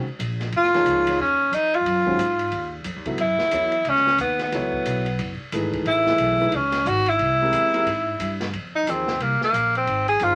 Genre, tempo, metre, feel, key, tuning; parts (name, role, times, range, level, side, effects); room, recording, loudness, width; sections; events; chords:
modal jazz; 180 BPM; 4/4; swing 63% on 8ths; A4 = 440 Hz
clear tenor saxophone; melody; 0.0-10.3 s; Bb3 to Ab4; -22 LUFS; equal
warm concert grand piano; accompaniment; 0.0-10.3 s; Eb3 to Fb5; -30 LUFS; equal
upright bass; bass; 0.0-10.3 s; Gb1 to Ab2; -32 LUFS; equal
open jazz drum kit; drums; 0.2-10.3 s; hi-hat, kick drum, ride cymbal, snare drum; -36 LUFS; equal
moderate small room reverb, RT60 0.5 s; vinyl crackle; -22 LUFS; mono
0.0-8.5 A section; 8.5-10.3 B section
tenor saxophone solo 8.5-10.3
0.0 Ebm11; 3.2 Gbm11; 7.2 C7b13; 8.5 Fm11